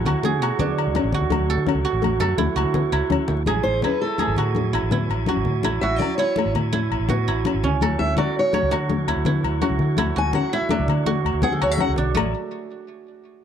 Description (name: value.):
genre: highlife guitar band.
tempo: 110 BPM (dotted quarters).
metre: 12/8.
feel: straight.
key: A major.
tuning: A4 = 443 Hz.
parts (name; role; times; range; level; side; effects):
nylon-string guitar; accompaniment; 0.0-12.3 s; G#3 to C#4; -28 LUFS; left 8 dB; none.
percussive tonewheel organ; sustained chords; 0.0-12.3 s; A3 to G#5; -35 LUFS; right 1 dB; overdrive, fast rotary speaker.
guzheng; arpeggios; 0.0-12.3 s; A3 to C#5; -25 LUFS; right 8 dB; tape echo.
fingered electric bass; bass; 0.0-12.3 s; G#1 to D3; -24 LUFS; equal; none.
agogo bells; percussion; 0.1-12.3 s; none; -30 LUFS; left 20 dB; none.
congas; percussion; 0.1-12.3 s; none; -27 LUFS; left 3 dB; none.
fingerpicked steel-string acoustic guitar; melody; 3.6-11.9 s; A4 to G#5; -24 LUFS; left 1 dB; none.
room: small room ambience.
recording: dry, close 1970s-style studio recording.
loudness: -19 LUFS.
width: side -8 dB against mid.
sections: 0.0-3.5 A section; 3.5-12.2 B section; 12.2-13.4 C section.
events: steel-string acoustic guitar solo 3.5-12.2.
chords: 0.0 Dmaj7; 3.5 Amaj7; 7.8 Dmaj7; 12.2 Amaj7.